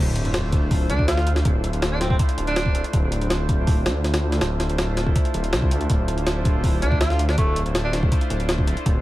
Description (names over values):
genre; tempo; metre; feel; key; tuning
drum and bass, jungle; 162 BPM; 4/4; straight; D minor; A4 = 440 Hz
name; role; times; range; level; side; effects
warbly tape-like pad; sustained chords; 0.0-9.0 s; A3 to C5; -29 LUFS; right 1 dB; chorus, built-in reverb
detuned saw bass; bass; 0.0-9.0 s; D1 to D2; -23 LUFS; equal; tube saturation
sub drop; sound effects; 0.0-1.5 s; none; -30 LUFS; equal; none
jungle sampler-style drum kit; drums; 0.2-8.9 s; hi-hat, kick drum, snare drum; -22 LUFS; equal; none
warm tenor saxophone; melody; 0.9-2.8, 6.8-8.0 s; A3 to F4; -28 LUFS; right 1 dB; vintage 12-bit sampler grit, dub echo
room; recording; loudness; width
little or no reverb; vinyl crackle; -19 LUFS; side -16 dB against mid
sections
0.0-9.0 A section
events
impact 0.0-1.5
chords
0.0 Dm9